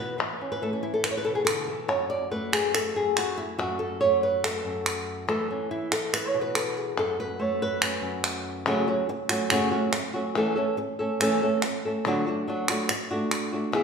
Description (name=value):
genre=flamenco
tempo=142 BPM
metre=4/4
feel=straight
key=F# minor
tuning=A4 = 439 Hz
part: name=flamenco guitar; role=melody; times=0.0-13.8 s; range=F#2 to D5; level=-25 LUFS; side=equal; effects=none
part: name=palmas hand claps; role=percussion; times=0.2-13.8 s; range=none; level=-29 LUFS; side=equal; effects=none
room=wet recital hall reverb, RT60 1.4 s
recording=recorded in a church or concert hall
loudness=-24 LUFS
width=side -6 dB against mid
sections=0.0-8.7 A section; 8.7-13.8 B section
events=nylon-string guitar solo 0.0-8.7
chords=0.0 Esus4; 1.9 F#m; 5.3 Esus4; 7.0 F#m; 10.4 A/E; 12.0 D